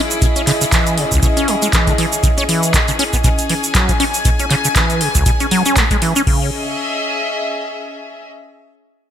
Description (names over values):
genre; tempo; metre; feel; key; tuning
acid house; 119 BPM; 4/4; swing 56% on 16ths; C# minor; A4 = 444 Hz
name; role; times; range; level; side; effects
warm analog pad; sustained chords; 0.0-6.3 s; E4 to D#5; -26 LUFS; right 2 dB; chorus, sidechain pumping
warm studio string section; texture; 0.0-8.2 s; C#4 to G#5; -22 LUFS; left 2 dB; sidechain pumping
booming analog drum machine; drums; 0.1-6.4 s; crash cymbal, handclaps, hi-hat, shaker; -19 LUFS; right 1 dB; gated reverb
acid bass, saw; riff; 0.2-6.5 s; C#2 to C#4; -18 LUFS; equal; analog chorus, cassette tape, sidechain pumping, ping-pong delay
electronic kick drum; drums; 0.2-6.4 s; none; -16 LUFS; equal; none
room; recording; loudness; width
light reverb, digital ambience; bright 1980s-style digital production; -13 LUFS; side -10 dB against mid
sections
0.0-6.3 A section; 6.3-8.3 B section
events
none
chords
0.0 C#m